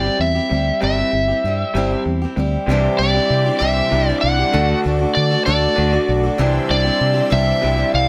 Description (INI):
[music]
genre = folk rock and heartland rock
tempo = 65 BPM (dotted quarters)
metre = 6/8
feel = straight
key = unclear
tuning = A4 = 440 Hz
[part]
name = overdriven slide guitar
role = melody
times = 0.0-8.1 s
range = D5 to F#5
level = -22 LUFS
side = equal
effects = none
[part]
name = picked steel-string acoustic guitar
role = accompaniment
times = 0.0-8.1 s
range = C3 to A4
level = -24 LUFS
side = equal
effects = none
[part]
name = electric guitar through a small old amp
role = riff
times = 0.0-8.1 s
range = C3 to G4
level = -25 LUFS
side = equal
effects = spring reverb
[part]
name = fingered electric bass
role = bass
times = 0.0-8.1 s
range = G1 to D3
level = -22 LUFS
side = equal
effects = none
[part]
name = rich studio string section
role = sustained chords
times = 2.7-8.1 s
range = F#4 to E6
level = -34 LUFS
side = equal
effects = none
[sound]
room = light reverb, small room ambience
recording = none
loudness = -17 LUFS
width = mono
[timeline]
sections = 0.0-2.7 A section; 2.7-8.1 B section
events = none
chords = 0.0 C; 2.7 Cadd9; 4.5 D; 6.4 Cadd9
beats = | 0.82 1.75 | 2.68 3.61 | 4.53 5.46 | 6.39 7.31